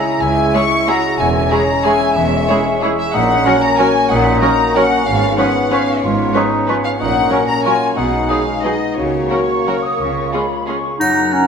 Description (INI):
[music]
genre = classical, orchestral ballroom waltz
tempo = 167-202 BPM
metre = 3/4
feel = rubato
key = F# major from 3.1 s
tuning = A4 = 441 Hz
[part]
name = warm studio violin section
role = melody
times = 0.0-10.8 s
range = C#5 to C#6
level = -18 LUFS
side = left 4 dB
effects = none
[part]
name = warm bassoon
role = accompaniment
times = 0.0-11.5 s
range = F#3 to F#4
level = -21 LUFS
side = right 2 dB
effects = none
[part]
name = warm French horn section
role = sustained chords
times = 0.0-10.9 s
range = G#3 to F#4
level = -21 LUFS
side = left 2 dB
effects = none
[part]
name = concert harp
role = arpeggios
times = 0.0-11.5 s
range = F#2 to C#5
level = -23 LUFS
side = left 4 dB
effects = none
[part]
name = clear studio cello section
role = bass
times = 0.2-10.3 s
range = C#2 to C#3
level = -24 LUFS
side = right 4 dB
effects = none
[part]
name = rich studio double bass section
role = bass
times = 0.2-10.3 s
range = E1 to C#2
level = -25 LUFS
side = right 4 dB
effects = none
[part]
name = flute section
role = second line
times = 0.5-11.5 s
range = A#5 to E6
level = -25 LUFS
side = right 1 dB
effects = none
[part]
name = rich studio violin section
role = second line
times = 0.5-10.8 s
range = E#4 to C#5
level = -26 LUFS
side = left 2 dB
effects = none
[part]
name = warm clarinet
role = second line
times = 0.5-11.5 s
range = C#4 to B4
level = -24 LUFS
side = equal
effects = none
[part]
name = rich studio viola section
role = accompaniment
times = 0.5-10.8 s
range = E#3 to E4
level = -24 LUFS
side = right 3 dB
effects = none
[part]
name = clear oboe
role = second line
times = 11.0-11.5 s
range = F#5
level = -21 LUFS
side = right 4 dB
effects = none
[part]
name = triangle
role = percussion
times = 11.0-11.5 s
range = none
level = -29 LUFS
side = left 3 dB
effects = none
[sound]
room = wet scoring stage reverb, RT60 1.9 s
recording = minimal, uncompressed stereo recording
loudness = -13 LUFS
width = side -6 dB against mid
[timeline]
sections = 0.0-11.0 A section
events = none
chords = 0.0 C#m; 1.2 C#m/E; 3.1 F#/A#; 5.1 C#7/G#; 7.0 F#/A#; 8.0 G#m7/B; 9.0 F#/C#; 10.0 C#